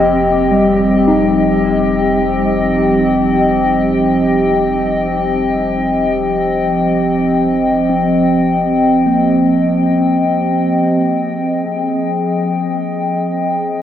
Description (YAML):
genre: ambient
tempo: free time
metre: none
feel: none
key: unclear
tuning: A4 = 441 Hz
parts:
  - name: warbly tape-like pad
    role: sustained chords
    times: 0.0-13.8 s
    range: F3 to G5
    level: -13 LUFS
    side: equal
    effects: chorus, built-in reverb
  - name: mellow tine electric piano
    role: arpeggios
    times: 0.0-11.7 s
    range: G3 to Eb5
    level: -18 LUFS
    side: left 1 dB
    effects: medium stereo tremolo, diffuse ambient delay
  - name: warm sub bass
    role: bass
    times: 0.0-10.8 s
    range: F1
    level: -30 LUFS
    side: left 1 dB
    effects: none
room: wet cathedral reverb, RT60 6.9 s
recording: worn, warbling old tape, cassette tape, warbly pitch drift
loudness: -12 LUFS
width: side -10 dB against mid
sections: 0.0-10.8 A section; 10.8-13.8 B section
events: fade-out on sub bass 0.0-10.8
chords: 0.0 Cm/F; 10.8 Fm9